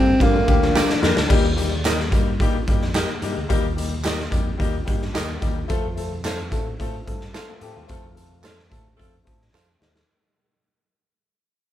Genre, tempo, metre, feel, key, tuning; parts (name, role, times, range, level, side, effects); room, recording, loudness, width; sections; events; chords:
uptempo 1960s-style soul; 109 BPM; 4/4; straight; A4 = 440 Hz
breathy alto saxophone; melody; 0.0-1.0 s; Bb3 to C4; -19 LUFS; right 1 dB
warm concert grand piano; accompaniment; 0.0-10.0 s; D3 to A4; -27 LUFS; left 7 dB
fingered electric bass; bass; 0.0-10.0 s; D2 to A2; -28 LUFS; equal
electric guitar through a small old amp; riff; 0.2-1.3, 7.5-8.5 s; F3 to G4; -26 LUFS; left 4 dB; spring reverb
raw garage drum kit; drums; 0.2-10.1 s; crash cymbal, hi-hat, kick drum, ride cymbal, snare drum; -22 LUFS; equal
tambourine and handclaps; percussion; 0.5-10.0 s; -35 LUFS; right 4 dB
bright saxophone section; second line; 0.7-1.2, 7.9-9.2 s; C4 to Bb4; -28 LUFS; right 1 dB
direct-recorded clean electric guitar; stabs; 0.8-9.7 s; G4 to F5; -28 LUFS; right 6 dB
light reverb; band playing live in one room; -19 LUFS; side -12 dB against mid
0.0-1.3 A section; 1.3-10.1 B section
drum fill 0.8-1.3, 9.5-10.1; fade-out 1.3-10.1; band accent 7.9-10.1
0.0 Gm; 1.3 Eb; 5.7 F